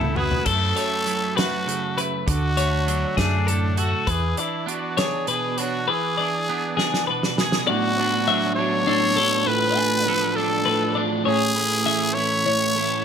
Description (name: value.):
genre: math rock and midwest emo.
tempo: 67 BPM (dotted quarters).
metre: 6/8.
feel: straight.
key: A major.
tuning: A4 = 441 Hz.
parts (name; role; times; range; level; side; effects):
growling trumpet; melody; 0.0-13.0 s; D4 to C#5; -24 LUFS; equal; slapback echo.
clean electric guitar; accompaniment; 0.0-13.0 s; F#2 to A4; -27 LUFS; right 8 dB; ensemble chorus.
twelve-string electric guitar; arpeggios; 0.0-13.0 s; D4 to G#5; -26 LUFS; left 8 dB; none.
hollow-body short-scale fingered electric bass; bass; 0.0-4.3 s; C#2 to F#2; -24 LUFS; equal; none.
loose indie drum kit; drums; 0.0-7.7 s; crash cymbal, hi-hat, kick drum, snare drum, toms; -26 LUFS; right 1 dB; none.
crunchy overdriven guitar; riff; 7.7-13.0 s; F#3 to A4; -26 LUFS; left 1 dB; none.
room: light reverb.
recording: none.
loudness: -19 LUFS.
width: side -7 dB against mid.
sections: 0.0-7.7 A section; 7.7-13.0 B section.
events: drum fill 0.0-0.5, 6.8-7.7.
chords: 0.5 F#m7; 2.3 Dmaj7; 4.1 E7; 7.7 Bm7/A; 9.5 Dm6/A; 11.3 Amaj9.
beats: | 0.46 1.37 | 2.27 3.17 | 4.07 4.97 | 5.88 6.77 | 7.67 8.57 | 9.47 10.36 | 11.26 12.16.